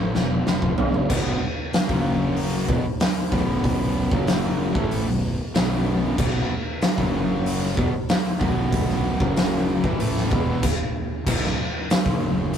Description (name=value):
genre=stoner and doom metal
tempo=94 BPM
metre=4/4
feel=straight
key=unclear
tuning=A4 = 441 Hz
part: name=fuzz guitar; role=riff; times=0.0-12.6 s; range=B1 to A3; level=-29 LUFS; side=left 1 dB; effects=distortion
part: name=fuzz fingered electric bass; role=bass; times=0.0-12.6 s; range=B0 to A1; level=-27 LUFS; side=equal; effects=overdrive
part: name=oversized low-tuned drum kit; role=drums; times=0.1-12.6 s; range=crash cymbal, hi-hat, kick drum, snare drum, toms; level=-22 LUFS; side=equal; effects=none
part: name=tight distorted guitar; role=riff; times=1.1-10.6 s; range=B1 to A3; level=-28 LUFS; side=right 1 dB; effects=distortion
room=moderate small room reverb, RT60 0.5 s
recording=rough rehearsal-room recording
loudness=-20 LUFS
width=side -8 dB against mid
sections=0.0-1.1 A section; 1.1-11.3 B section; 11.3-12.6 B section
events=drum fill 0.0-1.1; stop 10.6-11.3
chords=0.0 B5; 1.9 F#5; 2.7 B5; 4.1 F#5; 4.8 B5; 7.0 F#5; 7.8 B5; 9.2 F#5; 9.8 Esus4; 11.3 B5; 12.1 F#5